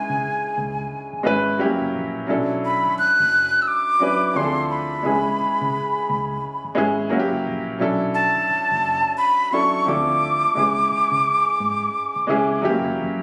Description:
R&B, neo-soul; 87 BPM; 4/4; swing 61% on 16ths; B dorian; A4 = 440 Hz
breathy jazz flute; melody; 0.0-12.6 s; G#5 to F#6; -22 LUFS; equal
warm baby grand piano; accompaniment; 0.0-13.2 s; F3 to B4; -25 LUFS; equal
vintage muted fingered electric bass; bass; 0.1-13.2 s; F#1 to C#3; -35 LUFS; equal
moderate plate reverb, RT60 2.3 s; recorded on a phone in the room, club reverb; -21 LUFS; mono
0.0-13.2 A section
0.0 C#m7; 1.6 F#7b9; 2.3 Bm11; 4.3 Dm7; 5.0 C#m7; 7.1 F#7b9; 7.8 Bm11; 9.9 Dm7; 10.5 C#m7; 12.6 F#7b9

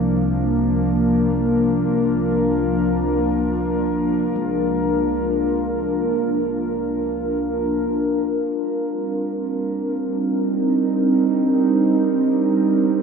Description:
ambient; free time; C minor; A4 = 441 Hz
warbly tape-like pad; sustained chords; 0.0-13.0 s; C2 to Bb4; -18 LUFS; equal; chorus, built-in reverb
handpan; arpeggios; 0.0-6.3 s; Ab3 to D4; -41 LUFS; left 3 dB
wet cathedral reverb, RT60 5.4 s; -18 LUFS; side -6 dB against mid
0.0-7.9 A section; 7.9-13.0 B section
0.0 Bb/C; 7.9 Cm9

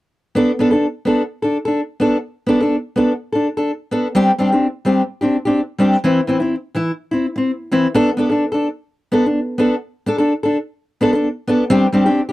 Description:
highlife; 127 BPM; 4/4; swing 53% on 16ths; A4 = 440 Hz
fingerpicked steel-string acoustic guitar; solo; 0.3-12.3 s; E3 to A4; -14 LUFS; equal
little or no reverb; dry, close 1970s-style studio recording; -15 LUFS; side -17 dB against mid
0.4-7.9 A section; 7.9-12.3 B section
0.4 Bm7; 4.2 Csus2; 6.0 C/E; 7.9 Bm7; 11.7 Csus2

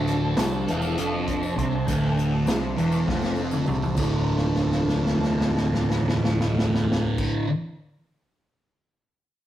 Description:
psychedelic rock; 200 BPM (eighths); 7/8; straight; D minor; A4 = 439 Hz
dark studio string section; sustained chords; 0.0-7.3 s; F3 to A4; -32 LUFS; right 1 dB
thick fuzz guitar; riff; 0.0-7.5 s; D2 to D3; -24 LUFS; equal; distortion, phaser
growling picked electric bass; bass; 0.0-7.3 s; D1 to C2; -30 LUFS; equal; overdrive
vintage drum kit; drums; 0.1-7.3 s; crash cymbal, hi-hat, kick drum, snare drum, toms; -26 LUFS; equal
tambourine; percussion; 0.1-7.3 s; -48 LUFS; left 3 dB
wet stone room reverb, RT60 0.9 s; rough rehearsal-room recording, warm saturation; -21 LUFS; side -12 dB against mid
0.0-4.0 A section; 4.0-8.2 B section
drum fill 3.1-4.0, 4.3-7.2
0.0 Dm

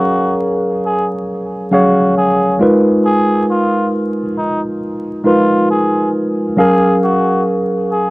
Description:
lo-fi hip hop; 68 BPM; 4/4; swing 60% on 16ths; G# dorian; A4 = 444 Hz
trumpet with cup mute; melody; 0.0-8.1 s; D#4 to G#4; -18 LUFS; equal
mellow tine electric piano; accompaniment; 0.0-8.1 s; F#3 to A#5; -13 LUFS; equal; cassette tape
light reverb; home recording on cassette, vinyl crackle; -12 LUFS; side -22 dB against mid
0.0-8.1 A section
0.0 F#maj9; 2.6 G#m69; 6.6 F#maj9

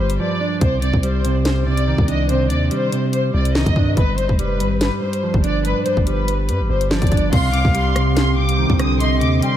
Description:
hip hop, drill; 143 BPM; 4/4; half-time; C harmonic minor; A4 = 441 Hz
warm studio violin section; melody; 0.0-9.6 s; B4 to Eb6; -23 LUFS; left 2 dB; low-pass filter, tape echo
mellow electric guitar; accompaniment; 0.0-9.6 s; G2 to D4; -21 LUFS; right 2 dB; low-pass filter
long sustained 808-style bass; bass; 0.0-9.4 s; F1 to G2; -20 LUFS; equal
drill drum kit; drums; 0.1-9.5 s; crash cymbal, hi-hat, kick drum, rim click, snare drum; -20 LUFS; equal
breathy concert flute; second line; 7.3-9.6 s; Eb5 to G5; -25 LUFS; left 4 dB; tape echo
airy breathy pad; sustained chords; 7.5-9.6 s; C3 to G4; -24 LUFS; equal; chorus
light reverb, digital ambience; -16 LUFS; side -11 dB against mid
0.0-7.3 A section; 7.3-9.6 B section
break 0.2-0.6
0.0 G7(no3); 0.6 Cmadd9; 4.0 G7; 7.3 Cmadd9

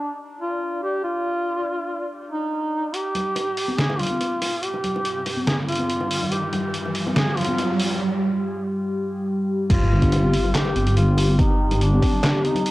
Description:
deep dubstep; 142 BPM; 4/4; half-time; A4 = 436 Hz
warm duduk; melody; 0.0-12.7 s; D4 to Ab4; -26 LUFS; equal; cassette tape, dub echo
dark analog pad; sustained chords; 0.2-12.7 s; G3 to D5; -28 LUFS; equal; chorus, vintage 12-bit sampler grit, cassette tape
trip hop sampler-style drum kit; drums; 2.9-12.7 s; crash cymbal, handclaps, hi-hat, snare drum; -25 LUFS; equal; low-pass filter on hats, cassette tape, low-pass filter on snare, low-pass filter on cymbals, low-pass filter on room
riser and impact; sound effects; 5.2-11.4 s; -30 LUFS; right 1 dB
congas and bongos; percussion; 3.1-12.6 s; -28 LUFS; left 1 dB
deep soft wobble bass; bass; 9.7-12.0 s; G1; -19 LUFS; equal; chorus, tube saturation
electronic kick drum; drums; 9.7-12.1 s; -20 LUFS; equal; cassette tape
moderate spring reverb, RT60 1.8 s; home recording on cassette; -20 LUFS; side -18 dB against mid
0.0-2.9 A section; 2.9-9.7 B section; 9.7-12.7 C section
build-up 2.9-9.7; filter sweep on analog synth pad 2.9-9.7; riser 5.2-8.0; drop 9.7-12.7; impact 9.7-11.4
0.0 N.C.; 9.7 G5

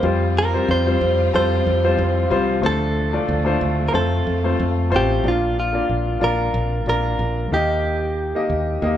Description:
pop; 92 BPM; 4/4; swing 56% on 16ths; Bb major; A4 = 440 Hz
direct-recorded clean electric guitar; melody; 0.0-9.0 s; F4 to C5; -23 LUFS; right 2 dB
clear upright piano; accompaniment; 0.0-9.0 s; Bb2 to Eb5; -22 LUFS; left 3 dB
warm studio string section; sustained chords; 0.0-5.2 s; C3 to F4; -32 LUFS; equal
fingered electric bass; bass; 0.0-9.0 s; A1 to F2; -22 LUFS; equal
moderate large studio reverb, RT60 1.2 s; band playing live in one room; -17 LUFS; side -11 dB against mid
0.0-5.2 A section; 5.2-9.0 B section
0.0 Fsus2; 2.6 Dm7; 3.9 F; 5.2 Bb; 7.5 Eb

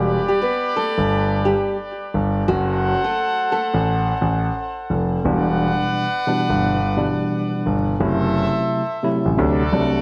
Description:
hip hop; 87 BPM; 4/4; swing 62% on 16ths; E minor; A4 = 444 Hz
nylon-string guitar; melody; 0.0-4.0 s; F#3 to B4; -25 LUFS; equal; high-pass filter, low-pass filter, digital delay
bright trumpet section; stabs; 0.0-10.0 s; F#4 to F#5; -26 LUFS; equal; high-pass filter, low-pass filter, digital delay
dark concert grand piano; bass; 0.0-10.0 s; E1 to D2; -23 LUFS; equal
tine electric piano; accompaniment; 5.2-10.0 s; B2 to E4; -23 LUFS; equal; overdrive, cassette tape, high-pass filter, low-pass filter
light reverb; vinyl crackle; -20 LUFS; mono
0.0-10.0 A section
break 0.0-5.2
0.0 Em7 (rootless); 2.5 F#dim; 5.2 Em7; 8.0 F#m7b5; 9.4 D7

